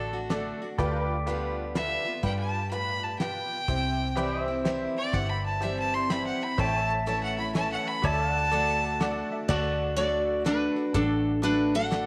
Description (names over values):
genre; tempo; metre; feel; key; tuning
honky-tonk and classic country; 124 BPM; 3/4; swing 64% on 8ths; D major; A4 = 440 Hz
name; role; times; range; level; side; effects
clear fiddle; second line; 0.0-9.5 s; A4 to C6; -32 LUFS; equal; none
honky-tonk upright piano; accompaniment; 0.0-12.1 s; E4 to A5; -38 LUFS; equal; none
picked steel-string acoustic guitar; accompaniment; 0.0-12.1 s; G2 to F#4; -37 LUFS; equal; none
pedal steel guitar; sustained chords; 0.0-12.1 s; B4 to A5; -39 LUFS; equal; none
vintage muted fingered electric bass; bass; 0.0-12.1 s; G1 to G2; -35 LUFS; equal; none
damped 70s drum kit; drums; 0.3-12.1 s; crash cymbal, hi-hat, kick drum, snare drum; -35 LUFS; equal; none
picked steel-string acoustic guitar; melody; 9.5-12.1 s; D4 to F#5; -28 LUFS; equal; slapback echo
room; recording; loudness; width
moderate echo chamber reverb, RT60 1.7 s, small room ambience; none; -28 LUFS; mono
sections
0.0-9.5 A section; 9.5-12.1 B section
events
fiddle solo 0.0-9.5; honky-tonk piano fill 8.5-9.5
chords
0.0 D; 0.8 G7/D; 3.7 C; 6.6 A; 8.0 D